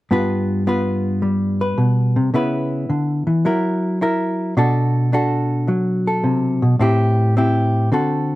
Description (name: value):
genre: solo jazz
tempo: 108 BPM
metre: 4/4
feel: swing 68% on 8ths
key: unclear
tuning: A4 = 440 Hz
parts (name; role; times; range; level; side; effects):
- hollow-body jazz guitar; solo; 0.1-8.4 s; G2 to B4; -16 LUFS; equal; none
room: light reverb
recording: none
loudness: -16 LUFS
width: side -17 dB against mid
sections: 0.1-8.4 A section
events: none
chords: 0.1 G7; 2.3 C#m7; 3.4 F#7; 4.6 Bm7; 6.8 Am7